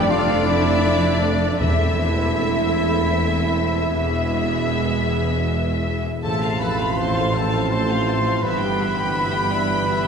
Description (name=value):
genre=classical, slow romantic movement for symphony orchestra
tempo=50-57 BPM (dotted quarters)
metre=12/8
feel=rubato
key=unclear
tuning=A4 = 440 Hz
part: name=rich studio violin section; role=melody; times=0.0-10.0 s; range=D5 to A5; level=-27 LUFS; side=left 3 dB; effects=none
part: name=bright studio violin section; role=second line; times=0.0-10.1 s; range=D5 to C6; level=-32 LUFS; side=left 3 dB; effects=none
part: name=mellow hollow concert flute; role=second line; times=0.0-10.1 s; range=D5 to C6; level=-31 LUFS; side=equal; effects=none
part: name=warm clarinet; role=second line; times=0.0-10.1 s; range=D4 to C5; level=-31 LUFS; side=left 2 dB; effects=none
part: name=mellow bassoon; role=accompaniment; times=0.0-10.1 s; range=B3 to F4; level=-30 LUFS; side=right 1 dB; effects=none
part: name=warm studio viola section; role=accompaniment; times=0.0-10.1 s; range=G3 to C5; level=-31 LUFS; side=right 1 dB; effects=none
part: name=dark French horn section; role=sustained chords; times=0.0-10.1 s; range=G3 to G4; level=-31 LUFS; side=right 1 dB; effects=none
part: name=warm trombone section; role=sustained chords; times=0.0-10.1 s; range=A2 to A3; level=-30 LUFS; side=right 2 dB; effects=none
part: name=concert harp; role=arpeggios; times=0.0-10.1 s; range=E2 to A4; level=-30 LUFS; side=left 5 dB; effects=none
part: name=mellow trumpet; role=stabs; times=0.0-10.1 s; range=D4 to C5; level=-27 LUFS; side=right 2 dB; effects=none
part: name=rich studio cello section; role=bass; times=0.0-10.1 s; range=E2 to A2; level=-27 LUFS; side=right 1 dB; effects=none
part: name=rich studio double bass section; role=bass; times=0.0-10.1 s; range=E1 to A1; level=-28 LUFS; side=right 2 dB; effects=none
part: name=warm tuba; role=bass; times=0.0-10.1 s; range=E1 to A1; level=-27 LUFS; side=right 2 dB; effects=none
part: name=timpani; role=percussion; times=1.6-7.3 s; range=E2 to A2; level=-28 LUFS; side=equal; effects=none
room=wet cathedral reverb, RT60 4.5 s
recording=recorded in a church or concert hall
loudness=-18 LUFS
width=side -6 dB against mid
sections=0.0-10.1 A section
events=none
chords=0.0 Dm/F; 1.6 Am/E; 3.9 E; 6.2 F/A; 8.4 Em/G